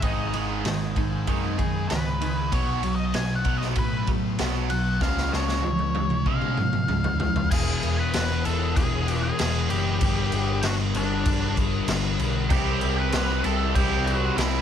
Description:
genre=quiet-loud alternative rock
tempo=96 BPM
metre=4/4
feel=straight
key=unclear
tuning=A4 = 440 Hz
part: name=octave-fuzz lead guitar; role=melody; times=0.0-14.6 s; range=D4 to B5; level=-30 LUFS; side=left 1 dB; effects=distortion, plate reverb, tape echo
part: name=twangy electric guitar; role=arpeggios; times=0.0-2.5 s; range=G#2 to G#4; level=-34 LUFS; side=right 2 dB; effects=plate reverb
part: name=biting overdriven guitar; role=riff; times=0.0-7.5, 12.5-14.6 s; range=G#2 to E4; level=-30 LUFS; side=right 15 dB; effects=phaser
part: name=thick fuzz guitar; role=riff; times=0.0-14.6 s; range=E2 to C#4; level=-29 LUFS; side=left 16 dB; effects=distortion
part: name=overdriven picked electric bass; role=bass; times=0.0-14.6 s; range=E1 to B2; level=-28 LUFS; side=equal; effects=none
part: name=raw garage drum kit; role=drums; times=0.0-14.5 s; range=crash cymbal, kick drum, ride cymbal, snare drum, toms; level=-27 LUFS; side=right 1 dB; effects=none
room=light reverb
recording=none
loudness=-22 LUFS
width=side -9 dB against mid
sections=0.0-7.5 A section; 7.5-14.6 B section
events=lead electric guitar solo 0.0-7.5; drum fill 5.0-7.5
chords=0.0 G#m; 2.5 B5; 5.0 C#; 7.5 E; 10.0 G; 12.5 C

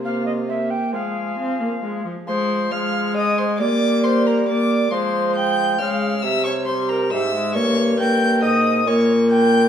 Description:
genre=classical, renaissance-style consort dance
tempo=136 BPM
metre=3/4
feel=straight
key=F minor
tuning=A4 = 439 Hz
part: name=warm violin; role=melody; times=0.0-9.7 s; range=F4 to G6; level=-25 LUFS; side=left 3 dB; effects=none
part: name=mellow tenor recorder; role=second line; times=0.0-9.7 s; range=Bb4 to G5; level=-24 LUFS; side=right 3 dB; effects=none
part: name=rich viola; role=accompaniment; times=0.0-9.7 s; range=F3 to C4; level=-21 LUFS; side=left 1 dB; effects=none
part: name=warm bassoon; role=bass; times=0.0-9.7 s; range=G2 to Ab3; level=-24 LUFS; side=right 1 dB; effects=none
room=wet stone room reverb, RT60 1.4 s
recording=heard from further back in the room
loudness=-17 LUFS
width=side -9 dB against mid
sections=0.0-2.3 A section; 2.3-9.7 A section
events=none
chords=0.5 C7; 0.9 Fm; 3.6 Gm; 4.9 Fm; 6.2 C; 7.6 Gdim; 8.9 Bbm

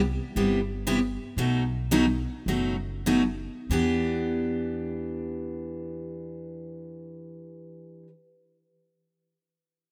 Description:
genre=acoustic string swing (jazz manouche)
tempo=90-126 BPM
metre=4/4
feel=swing 65% on 8ths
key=E minor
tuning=A4 = 442 Hz
part: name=upright bass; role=bass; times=0.0-8.0 s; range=F#1 to E2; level=-35 LUFS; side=equal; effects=none
part: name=picked steel-string acoustic guitar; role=accompaniment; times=0.4-8.1 s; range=B2 to G4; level=-29 LUFS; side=equal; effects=none
room=moderate lush hall reverb, RT60 2.7 s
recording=rough home demo mix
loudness=-28 LUFS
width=mono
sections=0.0-3.7 A section; 3.7-9.1 B section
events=slowing down 0.0-3.7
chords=0.0 Cmaj7; 1.4 B7; 3.7 Em7

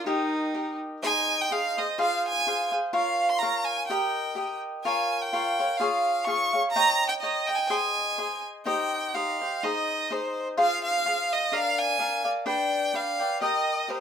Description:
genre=mexican folk, mariachi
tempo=126 BPM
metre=2/4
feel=swing 54% on 8ths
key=Ab major, C minor from 8.7 s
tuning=A4 = 438 Hz
part: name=clear violin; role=melody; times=0.0-14.0 s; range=Eb4 to Db6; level=-26 LUFS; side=right 2 dB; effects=none
part: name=cavaquinho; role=accompaniment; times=0.0-14.0 s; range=D4 to Bb5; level=-27 LUFS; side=left 1 dB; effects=none
room=moderate studio reverb, RT60 0.6 s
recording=minimal, uncompressed stereo recording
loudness=-24 LUFS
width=side -8 dB against mid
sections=0.0-1.0 A section; 1.0-8.7 B section; 8.7-14.0 C section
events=none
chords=0.1 Eb; 1.0 Ab; 2.0 Fm; 2.9 Bbm; 3.9 Eb; 4.8 Bbm; 5.8 Db; 6.7 Eb7; 7.7 Ab; 8.7 Cm; 9.6 Ab; 10.6 Fm; 11.5 Bb; 12.5 G; 13.4 Eb

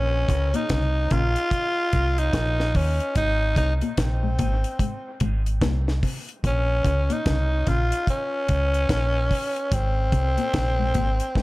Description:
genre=dub reggae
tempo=73 BPM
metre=4/4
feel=swing 62% on 16ths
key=Bb minor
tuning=A4 = 440 Hz
part: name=growling tenor saxophone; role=melody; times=0.0-11.4 s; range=C4 to F4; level=-25 LUFS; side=equal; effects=dub echo
part: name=deep dub fingered electric bass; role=bass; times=0.0-11.2 s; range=Ab1 to Eb2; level=-23 LUFS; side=equal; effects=none
part: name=mellow electric guitar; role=accompaniment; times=0.3-6.2 s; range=Ab3 to Bb4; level=-47 LUFS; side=right 2 dB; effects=none
part: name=electric guitar at the edge of break-up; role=arpeggios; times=0.3-11.4 s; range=Ab2 to Db3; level=-31 LUFS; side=left 4 dB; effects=none
part: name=deep reggae drum kit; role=drums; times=0.3-11.4 s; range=hi-hat, kick drum, snare drum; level=-26 LUFS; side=equal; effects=none
room=light reverb, small room reverb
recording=none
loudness=-21 LUFS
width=side -20 dB against mid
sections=0.0-11.4 A section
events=none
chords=0.0 Bbm; 3.2 Ab; 6.4 Bbm; 9.7 Ab

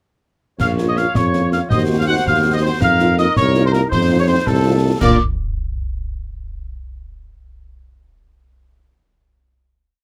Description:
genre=military-style march for wind band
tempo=109 BPM (dotted quarters)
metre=6/8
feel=straight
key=Bb minor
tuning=A4 = 440 Hz
part: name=bright trumpet section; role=melody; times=0.6-5.2 s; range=A4 to Gb5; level=-24 LUFS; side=equal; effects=none
part: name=mellow hollow wooden piccolo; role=second line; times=0.6-5.2 s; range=A5 to Gb6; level=-23 LUFS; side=equal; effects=none
part: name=warm woodwind section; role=second line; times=0.6-5.2 s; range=Eb4 to Db5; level=-28 LUFS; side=equal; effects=none
part: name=warm tuba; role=bass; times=0.6-5.2 s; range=Bb1 to Bb2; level=-20 LUFS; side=equal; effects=none
part: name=concert snare drum, clash cymbals and concert bass drum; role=drums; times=0.6-5.2 s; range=none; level=-25 LUFS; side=equal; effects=none
part: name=mellow French horn section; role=accompaniment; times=0.8-5.2 s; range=Bb3 to Gb4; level=-25 LUFS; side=equal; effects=none
room=light reverb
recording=close, detailed microphones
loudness=-16 LUFS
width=mono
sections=0.6-5.0 A section; 5.0-6.1 final chord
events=none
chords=0.6 Bbm; 1.7 Cdim/Eb; 2.8 F7sus4; 3.9 F7; 5.0 Bb

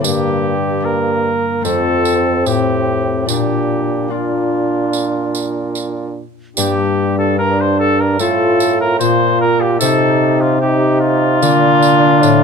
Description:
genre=classical, renaissance-style consort dance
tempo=74 BPM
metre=4/4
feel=straight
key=unclear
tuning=A4 = 440 Hz
part: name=mellow cornet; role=melody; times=0.0-12.4 s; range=F4 to C5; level=-17 LUFS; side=equal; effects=none
part: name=concert harp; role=accompaniment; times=0.0-12.4 s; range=F2 to Bb4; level=-20 LUFS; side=left 13 dB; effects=none
part: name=warm trombone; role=accompaniment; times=0.0-12.4 s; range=Bb3 to F4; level=-18 LUFS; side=right 3 dB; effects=none
part: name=warm bassoon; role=bass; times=0.0-12.4 s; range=F2 to C3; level=-19 LUFS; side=right 3 dB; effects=none
part: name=tambourine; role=percussion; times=0.0-12.4 s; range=none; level=-23 LUFS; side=right 7 dB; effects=none
room=light reverb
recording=close, detailed microphones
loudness=-12 LUFS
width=side -6 dB against mid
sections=0.0-6.6 A section; 6.6-12.4 A section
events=none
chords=0.0 Gm; 1.7 F; 3.3 Bb; 6.6 Gm; 8.2 F/A; 9.8 Cm; 11.4 Bb

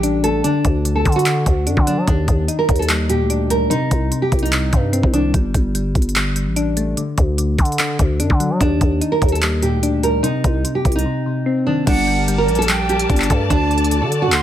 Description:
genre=hip hop, trap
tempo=147 BPM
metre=4/4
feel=half-time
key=G harmonic minor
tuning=A4 = 439 Hz
part: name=nylon-string guitar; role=melody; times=0.0-5.3, 8.6-14.4 s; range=D4 to Bb4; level=-20 LUFS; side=right 2 dB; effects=low-pass filter, tape echo
part: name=soft electric-piano-like synth keys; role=accompaniment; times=0.0-14.4 s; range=Bb2 to Eb4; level=-22 LUFS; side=left 3 dB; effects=chorus, low-pass filter
part: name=growling 808-style bass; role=bass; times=0.0-14.4 s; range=G1 to F#3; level=-20 LUFS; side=equal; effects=none
part: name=trap drum kit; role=drums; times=0.0-14.4 s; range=crash cymbal, handclaps, hi-hat, kick drum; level=-19 LUFS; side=equal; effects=none
part: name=silver concert flute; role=second line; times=11.9-14.4 s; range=F#5 to C6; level=-24 LUFS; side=right 6 dB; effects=tape echo
part: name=dark studio string section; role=sustained chords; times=11.9-14.4 s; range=F#4 to A5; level=-25 LUFS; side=left 2 dB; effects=none
room=light reverb, small room ambience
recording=none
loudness=-15 LUFS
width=side -11 dB against mid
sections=0.0-11.9 A section; 11.9-14.4 B section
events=silent gap 11.1-11.9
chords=0.4 D; 2.1 Ebmaj7; 3.7 Cm; 5.3 Gsus2; 7.0 D; 8.6 Ebmaj7; 10.2 Cm; 11.9 Gmadd9; 13.5 D

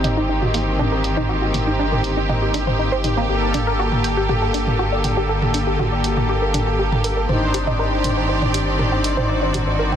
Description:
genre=melodic techno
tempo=120 BPM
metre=4/4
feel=straight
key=G minor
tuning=A4 = 443 Hz
part: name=rich symphonic string section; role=sustained chords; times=0.0-10.0 s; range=D3 to D5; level=-24 LUFS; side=right 1 dB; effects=low-pass filter
part: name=analog pluck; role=arpeggios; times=0.0-10.0 s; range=Bb3 to C6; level=-25 LUFS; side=equal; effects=chorus, phaser, dub echo
part: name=brassy analog pad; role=stabs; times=0.0-10.0 s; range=Bb3 to C5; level=-23 LUFS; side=left 1 dB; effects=chorus, dub echo
part: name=dark detuned saw bass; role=bass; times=0.0-10.0 s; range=G1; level=-24 LUFS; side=equal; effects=tube saturation
part: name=punchy analog drum machine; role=drums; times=0.0-10.0 s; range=hi-hat, toms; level=-24 LUFS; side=right 1 dB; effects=low-pass filter on cymbals, low-pass filter on hats, low-pass filter on toms
room=moderate lush hall reverb, RT60 2.1 s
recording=dense, heavily limited modern master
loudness=-17 LUFS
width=side -9 dB against mid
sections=0.0-10.0 A section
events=none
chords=0.0 Eb6/G; 3.3 Gmadd9; 7.3 Cmadd9/G

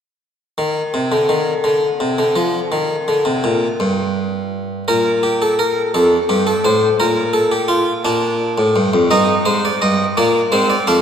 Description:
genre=classical, baroque-style 3-part fugue for harpsichord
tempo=56 BPM (dotted quarters)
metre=6/8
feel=straight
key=unclear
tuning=A4 = 435 Hz
part: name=harpsichord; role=solo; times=0.6-11.0 s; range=F2 to F5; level=-14 LUFS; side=equal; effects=none
room=wet concert hall reverb, RT60 2.2 s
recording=none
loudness=-14 LUFS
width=side -8 dB against mid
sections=0.6-11.0 A section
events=none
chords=0.6 N.C.; 4.9 Gmadd9/Bb; 5.9 F; 7.0 Bb5; 8.1 Bb; 9.1 Eb/G; 10.2 Bb7

